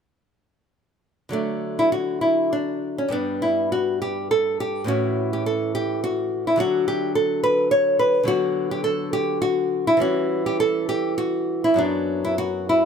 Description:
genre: classical, baroque-style dance for nylon-string guitar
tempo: 94-109 BPM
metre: 3/4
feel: rubato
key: D major, B minor from 8.3 s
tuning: A4 = 440 Hz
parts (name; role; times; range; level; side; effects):
- nylon-string guitar; solo; 1.3-12.9 s; F#2 to C#5; -20 LUFS; equal; none
room: little or no reverb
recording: close, detailed microphones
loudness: -20 LUFS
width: side -7 dB against mid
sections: 1.3-12.9 A section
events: none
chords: 1.3 D; 3.1 G; 4.9 A; 6.6 D; 8.3 Bm/D; 10.0 C#dim/E; 11.8 B5/F#

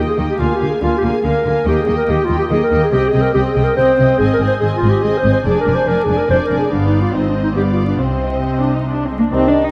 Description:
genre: quick classical-period movement for symphony orchestra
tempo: 142 BPM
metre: 3/4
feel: straight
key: C minor from 4.2 s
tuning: A4 = 441 Hz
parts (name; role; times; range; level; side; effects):
- muted studio violin section; melody; 0.0-9.1 s; Eb5 to Ab5; -30 LUFS; equal; none
- muted studio violin section; second line; 0.0-9.1 s; C5 to F5; -29 LUFS; equal; none
- muted symphonic viola section; accompaniment; 0.0-9.3 s; Bb3 to Eb4; -25 LUFS; equal; none
- muted studio cello section; bass; 0.0-9.7 s; F2 to Eb4; -22 LUFS; equal; none
- muted studio double bass section; bass; 0.0-9.7 s; F1 to Eb2; -23 LUFS; equal; none
- dark clarinet; second line; 0.1-9.7 s; C4 to C5; -19 LUFS; equal; none
- mellow flute section; second line; 9.3-9.7 s; Eb5; -22 LUFS; equal; none
- warm bassoon; accompaniment; 9.3-9.7 s; Eb3; -25 LUFS; equal; none
- clear French horn section; sustained chords; 9.3-9.5 s; C4 to Eb4; -24 LUFS; equal; none
room: moderate scoring stage reverb, RT60 1.9 s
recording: dark, warm production, vinyl crackle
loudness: -15 LUFS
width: mono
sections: 0.0-9.3 A section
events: none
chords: 0.4 Bb7/D; 1.7 Eb; 2.9 Cm; 4.2 Ab; 5.5 Ddim/F; 6.7 G7; 7.1 Ab; 7.6 G7; 8.0 Cm

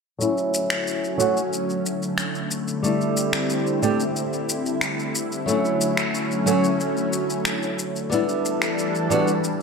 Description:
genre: sunset chillout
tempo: 91 BPM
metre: 4/4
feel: straight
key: D major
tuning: A4 = 440 Hz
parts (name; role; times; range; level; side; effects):
- flamenco guitar; accompaniment; 0.2-9.3 s; F#3 to G4; -23 LUFS; moving between left 3 dB and right 4 dB; auto-pan, low-pass filter, ping-pong delay
- lush unison pad; sustained chords; 0.2-9.6 s; D3 to A4; -25 LUFS; equal; chorus, phaser
- electronic shaker and finger snaps; drums; 0.2-9.6 s; none; -27 LUFS; left 1 dB; gated reverb
room: wet plate reverb, RT60 1.9 s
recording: bright 1980s-style digital production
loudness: -21 LUFS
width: side -5 dB against mid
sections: 0.2-9.6 A section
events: filter sweep on nylon-string guitar 0.2-9.6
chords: 0.2 Dmaj9; 2.5 C69; 5.5 Dmaj9; 8.1 A7sus4

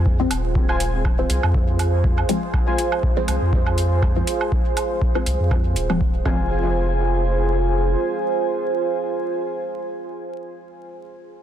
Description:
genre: dub techno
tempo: 121 BPM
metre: 4/4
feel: swing 55% on 16ths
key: F minor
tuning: A4 = 439 Hz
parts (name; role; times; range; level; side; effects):
- deep dark ambient pad; sustained chords; 0.0-9.6 s; F4 to C5; -25 LUFS; right 3 dB; chorus, built-in reverb, sidechain pumping
- warm sub bass; bass; 0.0-8.0 s; Eb1 to F2; -22 LUFS; equal; sidechain pumping
- electronic kick drum; drums; 0.1-6.4 s; none; -21 LUFS; equal; none
- filtered dub chord stab; stabs; 0.2-9.6 s; F3 to C4; -27 LUFS; left 2 dB; phaser, sidechain pumping, dub echo
- electronic hi-hat; drums; 0.3-5.9 s; none; -30 LUFS; right 1 dB; soft clipping on snare
- woodblock; percussion; 0.3-6.4 s; none; -32 LUFS; right 5 dB; sidechain pumping on perc, sidechain pumping on toms, dub echo
- warbly lo-fi synth keys; riff; 0.7-2.8, 6.3-9.6 s; F4 to Ab5; -29 LUFS; left 2 dB; chorus, sidechain pumping, low-pass filter, dub echo
room: light reverb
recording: dense, heavily limited modern master, vinyl crackle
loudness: -18 LUFS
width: side -10 dB against mid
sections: 0.0-6.5 A section; 6.5-10.5 B section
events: filter sweep on synth keys 0.0-6.5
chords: 0.0 Fm

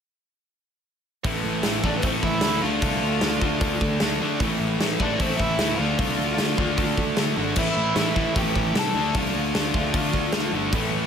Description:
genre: punk rock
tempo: 152 BPM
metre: 4/4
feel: straight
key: unclear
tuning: A4 = 440 Hz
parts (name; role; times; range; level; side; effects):
- crunchy overdriven guitar; riff; 1.2-11.1 s; A2 to D4; -27 LUFS; left 11 dB; none
- tight distorted guitar; riff; 1.2-11.1 s; A2 to D4; -28 LUFS; right 12 dB; distortion
- fuzz picked electric bass; bass; 1.2-11.1 s; G1 to D3; -28 LUFS; equal; overdrive
- big rock drum kit; drums; 1.2-10.8 s; crash cymbal, hi-hat, kick drum, snare drum; -26 LUFS; equal; none
- biting lead guitar; melody; 1.9-10.5 s; C4 to A5; -27 LUFS; equal; overdrive
room: light reverb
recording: none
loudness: -21 LUFS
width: side -7 dB against mid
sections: 1.2-11.1 A section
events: none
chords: 1.2 A5; 2.6 Dm; 4.4 Am; 5.8 Dm; 7.6 A5; 8.9 Dm

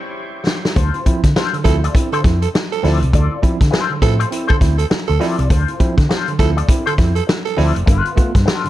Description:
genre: funk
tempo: 101 BPM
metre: 4/4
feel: swing 60% on 16ths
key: D dorian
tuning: A4 = 441 Hz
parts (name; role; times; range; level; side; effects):
- overdriven tonewheel organ; sustained chords; 0.0-0.7 s; E4 to C#5; -31 LUFS; left 1 dB; slow rotary speaker
- vintage drum kit; drums; 0.5-8.7 s; hi-hat, kick drum, snare drum; -16 LUFS; equal; none
- electric guitar with an envelope filter; accompaniment; 0.8-8.7 s; B3 to D5; -24 LUFS; left 7 dB; wah, harmonic tremolo
- barky tine electric piano; stabs; 0.8-8.7 s; G2 to F4; -23 LUFS; right 2 dB; fast stereo tremolo
- hollow-body short-scale fingered electric bass; bass; 0.8-8.4 s; F1 to D3; -16 LUFS; equal; none
- growling tenor saxophone; second line; 1.6-7.6 s; A4; -24 LUFS; right 11 dB; slapback echo
room: light reverb, small room ambience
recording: dark, warm production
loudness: -13 LUFS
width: side -14 dB against mid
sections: 0.8-8.7 A section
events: drum fill 0.0-0.8; band accent 0.0-0.8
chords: 0.0 A7#9 (rootless); 0.8 Dm7; 7.9 G9

